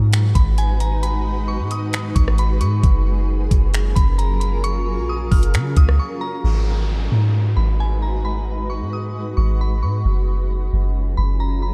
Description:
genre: hip hop, atmospheric cloud-rap.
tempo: 133 BPM.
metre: 4/4.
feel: half-time.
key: unclear.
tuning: A4 = 445 Hz.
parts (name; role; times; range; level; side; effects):
granular cloud pad; sustained chords; 0.0-11.7 s; F#3 to B4; -31 LUFS; equal; built-in reverb, lush chorus, sidechain pumping.
soft 808-style bass; bass; 0.0-11.7 s; F#1 to C#3; -21 LUFS; equal; none.
smooth R&B drum kit; drums; 0.1-6.0 s; finger snaps, hi-hat, kick drum, rim click; -20 LUFS; equal; none.
glassy synth bell; melody; 0.4-11.7 s; G#5 to E#6; -32 LUFS; equal; chorus, low-pass filter, tape echo.
downlifter; sound effects; 6.4-10.1 s; none; -38 LUFS; equal; none.
room: light reverb.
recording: none.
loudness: -19 LUFS.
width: mono.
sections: 0.0-6.4 A section; 6.4-11.7 B section.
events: break 6.0-6.4.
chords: 0.0 G#m7; 2.8 F#maj7; 6.4 G#m7; 10.1 F#maj7(no3).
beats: 0.13 0.58 | 1.03 1.48 1.93 2.38 | 2.83 3.29 3.74 4.19 | 4.64 5.09 5.54 5.99 | 6.44 6.89 7.34 7.80 | 8.25 8.70 9.15 9.60 | 10.05 10.50 10.95 11.40.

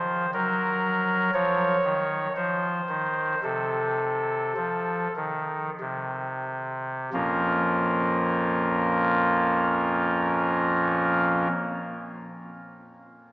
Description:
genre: classical, chorale-style piece for pipe organ.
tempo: 44-62 BPM.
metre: 4/4.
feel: rubato.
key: Bb minor.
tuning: A4 = 440 Hz.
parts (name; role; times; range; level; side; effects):
chamber organ, soft reed; solo; 0.0-11.5 s; Bb1 to Db5; -23 LUFS; equal; none.
room: wet cathedral reverb, RT60 4.4 s.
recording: small speaker sound.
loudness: -23 LUFS.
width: side -21 dB against mid.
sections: 0.0-7.1 A section; 7.1-12.4 B section.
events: slowing down 0.0-7.1.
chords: 0.0 Ebm; 2.4 F7; 7.1 Bbm.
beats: 0.33 1.33 | 2.36 3.43 4.56 5.80 | 7.14 8.45 9.77 11.10.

